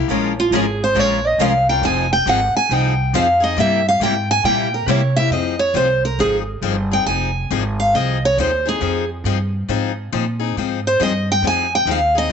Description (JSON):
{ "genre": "acoustic string swing (jazz manouche)", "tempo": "138 BPM", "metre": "4/4", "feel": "swing 65% on 8ths", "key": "F minor", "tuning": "A4 = 439 Hz", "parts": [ { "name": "picked steel-string acoustic guitar", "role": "accompaniment", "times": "0.0-12.3 s", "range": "C3 to Bb4", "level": "-23 LUFS", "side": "left 12 dB", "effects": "none" }, { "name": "upright bass", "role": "bass", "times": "0.0-12.3 s", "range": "F1 to C3", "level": "-22 LUFS", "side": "right 1 dB", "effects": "none" }, { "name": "picked steel-string acoustic guitar", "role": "accompaniment", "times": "0.1-5.0 s", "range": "C3 to Bb4", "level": "-26 LUFS", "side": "right 12 dB", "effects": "none" }, { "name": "picked steel-string acoustic guitar", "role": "melody", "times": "0.4-12.3 s", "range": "F4 to Ab5", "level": "-17 LUFS", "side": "right 1 dB", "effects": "none" } ], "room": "wet spring reverb, RT60 1.2 s, small room ambience", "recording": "1960s-style stereo with parts hard left and right, nothing above 8.0 kHz", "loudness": "-15 LUFS", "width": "side -7 dB against mid", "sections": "0.0-5.3 A section; 5.3-12.3 A section", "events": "steel-string acoustic guitar solo 0.0-12.3", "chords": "0.1 Bbm9; 1.8 Fm9; 3.6 C7; 5.3 Fm9", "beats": "| 0.09 0.53 0.96 1.40 | 1.83 2.27 2.71 3.14 | 3.58 4.02 4.45 4.89 | 5.32 5.76 6.20 6.63 | 7.07 7.51 7.94 8.38 | 8.82 9.25 9.69 10.13 | 10.56 11.00 11.43 11.87 | 12.31" }